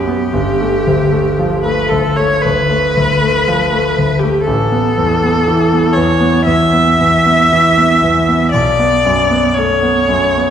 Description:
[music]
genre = classical, impressionist duo for viola and grand piano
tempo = 56-60 BPM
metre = 4/4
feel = rubato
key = unclear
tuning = A4 = 440 Hz
[part]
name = rich viola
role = melody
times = 0.0-10.5 s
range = G4 to E5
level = -13 LUFS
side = left 1 dB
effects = none
[part]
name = clear concert grand piano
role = accompaniment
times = 0.0-10.5 s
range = G1 to B3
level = -14 LUFS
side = equal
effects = none
[sound]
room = wet recital hall reverb, RT60 1.5 s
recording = heard from further back in the room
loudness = -10 LUFS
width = side -8 dB against mid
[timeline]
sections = 0.0-10.5 A section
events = none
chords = 0.3 G9; 4.5 Asus2; 8.5 Bm9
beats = | 0.33 1.38 2.42 3.45 | 4.46 5.45 6.46 7.50 | 8.53 9.56

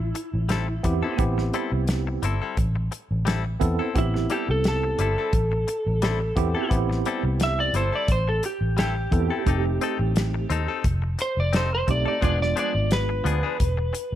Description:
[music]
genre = straight-eighth soul blues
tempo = 87 BPM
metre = 4/4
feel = swing 53% on 16ths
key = A minor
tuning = A4 = 440 Hz
[part]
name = electric slide guitar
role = melody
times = 0.0-14.2 s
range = E4 to E5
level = -27 LUFS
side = equal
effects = none
[part]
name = direct-recorded clean electric guitar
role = stabs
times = 0.0-14.0 s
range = F3 to A4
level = -31 LUFS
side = left 8 dB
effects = none
[part]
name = vintage muted fingered electric bass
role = bass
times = 0.0-14.2 s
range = E1 to E2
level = -25 LUFS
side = equal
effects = none
[part]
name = warm soul drum kit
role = drums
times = 0.2-14.1 s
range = hi-hat, kick drum, snare drum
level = -26 LUFS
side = equal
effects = none
[part]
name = barky tine electric piano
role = accompaniment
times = 0.8-13.4 s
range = G#3 to A4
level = -28 LUFS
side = right 4 dB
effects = fast stereo tremolo
[sound]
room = small room ambience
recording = none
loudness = -21 LUFS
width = side -12 dB against mid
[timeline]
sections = 0.0-14.2 A section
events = electric slide guitar solo 0.0-14.2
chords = 0.0 Am7; 9.5 F7; 12.2 E7b9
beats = 0.50 | 1.19 1.88 2.57 3.26 | 3.95 4.64 5.33 6.02 | 6.71 7.40 8.09 8.78 | 9.47 10.16 10.85 11.54 | 12.22 12.91 13.60

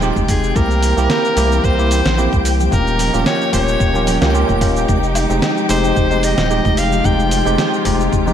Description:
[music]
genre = sunset chillout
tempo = 111 BPM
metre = 4/4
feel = swing 54% on 16ths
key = F minor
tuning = A4 = 440 Hz
[part]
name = bell-like tine electric piano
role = accompaniment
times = 0.0-8.3 s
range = Ab3 to G4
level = -19 LUFS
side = moving between left 5 dB and right 4 dB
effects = auto-pan, digital delay, slapback echo
[part]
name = dark chamber string section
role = sustained chords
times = 0.0-8.3 s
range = E3 to G5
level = -24 LUFS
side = left 2 dB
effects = none
[part]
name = round analog bass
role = bass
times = 0.0-8.3 s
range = Eb1 to Db2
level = -18 LUFS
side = equal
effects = none
[part]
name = dusty soul sampler-style drum kit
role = drums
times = 0.0-8.3 s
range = cabasa, hi-hat, snare drum, woodblock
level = -23 LUFS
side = equal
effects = none
[part]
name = twinkling granular texture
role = texture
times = 0.0-8.3 s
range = G5 to G6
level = -28 LUFS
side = left 1 dB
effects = built-in reverb
[part]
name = electronic kick drum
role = drums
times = 0.2-8.2 s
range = none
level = -19 LUFS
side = equal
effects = none
[part]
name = congas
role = percussion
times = 0.2-8.3 s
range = none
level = -28 LUFS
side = right 2 dB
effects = none
[part]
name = edgy soprano saxophone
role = melody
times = 0.3-7.9 s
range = Ab4 to G5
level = -21 LUFS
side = equal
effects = digital delay, slapback echo
[sound]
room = moderate lush hall reverb, RT60 2.1 s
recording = big arena sound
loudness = -13 LUFS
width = side -9 dB against mid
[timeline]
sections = 0.0-8.3 A section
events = none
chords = 0.0 Fm9; 0.6 C7; 2.7 Eb9; 4.9 Fm9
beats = 0.02 | 0.56 1.10 1.64 2.18 | 2.72 3.26 3.80 4.34 | 4.88 5.42 5.96 6.50 | 7.04 7.59 8.13

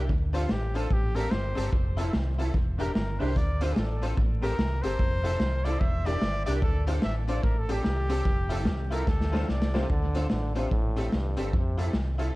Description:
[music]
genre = ska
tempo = 147 BPM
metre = 4/4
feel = swing 62% on 8ths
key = D minor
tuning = A4 = 441 Hz
[part]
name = electric guitar through a small old amp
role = accompaniment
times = 0.0-12.3 s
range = C4 to Bb4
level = -38 LUFS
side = right 2 dB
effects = ensemble chorus, tape echo
[part]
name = tack piano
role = stabs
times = 0.0-12.3 s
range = C4 to C5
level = -37 LUFS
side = left 3 dB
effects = tape echo
[part]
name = fingered electric bass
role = bass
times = 0.0-12.3 s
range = E1 to F2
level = -28 LUFS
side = equal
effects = none
[part]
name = raw garage drum kit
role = drums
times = 0.1-12.3 s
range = hi-hat, kick drum, snare drum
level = -29 LUFS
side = equal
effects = tape echo
[part]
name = warm trumpet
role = melody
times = 0.4-9.9 s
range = F4 to E5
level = -34 LUFS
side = equal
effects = tape echo
[part]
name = brilliant trombone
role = melody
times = 9.7-12.0 s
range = G2 to D3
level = -35 LUFS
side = equal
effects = none
[sound]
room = light reverb, small room ambience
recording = dark, warm production, vinyl crackle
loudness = -25 LUFS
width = side -20 dB against mid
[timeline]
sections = 0.0-9.9 A section; 9.9-12.4 B section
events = trumpet solo 0.0-9.9; drum fill 9.1-9.9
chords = 0.1 Dm7; 0.9 Am7; 1.7 Fmaj7; 2.5 Em7b5; 3.4 Dm7; 4.2 Am7; 5.0 Fmaj7; 5.8 Em7b5; 6.6 Dm7; 7.4 Am7; 8.3 Fmaj7; 9.1 Dm7; 10.7 Am7; 11.5 Fmaj7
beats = | 0.09 0.50 0.91 1.32 | 1.73 2.13 2.54 2.95 | 3.36 3.77 4.18 4.58 | 4.99 5.40 5.81 6.22 | 6.63 7.04 7.44 7.85 | 8.26 8.67 9.08 9.48 | 9.89 10.30 10.71 11.12 | 11.53 11.94

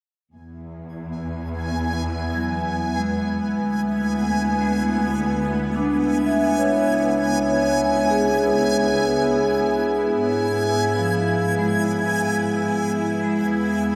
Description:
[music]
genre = ambient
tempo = 73 BPM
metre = 4/4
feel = straight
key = E mixolydian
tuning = A4 = 440 Hz
[part]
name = dark symphonic cello section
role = bass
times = 0.3-14.0 s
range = C#2 to G#2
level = -32 LUFS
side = equal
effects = tube saturation
[part]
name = bowed-like drone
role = drone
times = 1.0-14.0 s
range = B3 to E4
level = -30 LUFS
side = equal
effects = built-in reverb
[part]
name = backwards swelling texture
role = texture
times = 1.3-14.0 s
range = G#5 to G#6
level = -29 LUFS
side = equal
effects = built-in reverb
[part]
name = vibraphone with medium mallets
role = arpeggios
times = 2.3-14.0 s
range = F3 to E5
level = -23 LUFS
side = equal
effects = delay
[sound]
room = wet lush hall reverb, RT60 2.6 s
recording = dreamy mix soaked in reverb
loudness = -21 LUFS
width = mono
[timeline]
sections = 0.3-14.0 A section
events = none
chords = 0.3 E; 3.6 E7/D; 6.9 C#m7; 10.2 E/G#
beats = | 0.33 1.15 1.97 2.79 | 3.61 4.43 5.26 6.08 | 6.90 7.72 8.54 9.37 | 10.19 11.01 11.83 12.65 | 13.48

